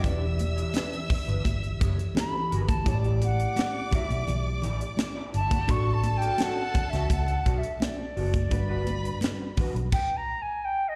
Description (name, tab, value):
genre	lush 1970s-style soul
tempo	85 BPM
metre	4/4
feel	straight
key	E dorian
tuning	A4 = 440 Hz
part	silver concert flute	melody	0.0-11.0 s	D5 to C#6	-33 LUFS	equal	slapback echo
part	warm studio violin section	second line	0.0-9.6 s	D4 to E6	-40 LUFS	equal	slapback echo
part	tine electric piano	accompaniment	0.0-9.9 s	E3 to D5	-38 LUFS	equal	slapback echo
part	electric guitar through a small old amp	riff	0.0-9.8 s	D4 to D5	-40 LUFS	equal	ensemble chorus, slapback echo
part	vintage muted fingered electric bass	bass	0.0-9.9 s	E1 to C#2	-30 LUFS	equal	none
part	tight funk drum kit	drums	0.0-10.1 s	crash cymbal, hi-hat, kick drum, snare drum	-30 LUFS	equal	none
part	congas	percussion	0.0-9.7 s	none	-39 LUFS	equal	slapback echo
room	little or no reverb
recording	live gig heard through the venue's PA, recital hall reverb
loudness	-27 LUFS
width	mono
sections	0.0-11.0 A section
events	flute solo 0.0-11.0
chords	0.0 Em7; 2.9 A7sus4; 5.7 Dmaj7/A; 8.5 Gmaj7; 9.9 N.C.